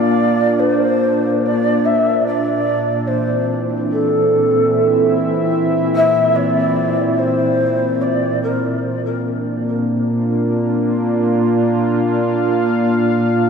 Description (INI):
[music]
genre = ambient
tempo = 73 BPM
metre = 4/4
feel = straight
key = Bb lydian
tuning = A4 = 440 Hz
[part]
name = breathy mellow long shakuhachi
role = melody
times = 0.0-8.8 s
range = A4 to E5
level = -18 LUFS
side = equal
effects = ping-pong delay
[part]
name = warm analog pad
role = sustained chords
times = 0.0-13.5 s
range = Bb2 to F5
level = -16 LUFS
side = equal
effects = chorus, tremolo
[sound]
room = wet cathedral reverb, RT60 5.7 s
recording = none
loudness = -14 LUFS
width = side -6 dB against mid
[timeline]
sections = 0.0-13.5 A section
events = filter sweep on analog synth pad 0.0-13.5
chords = 0.0 Bb; 2.2 Am/Bb (rootless); 8.8 Bb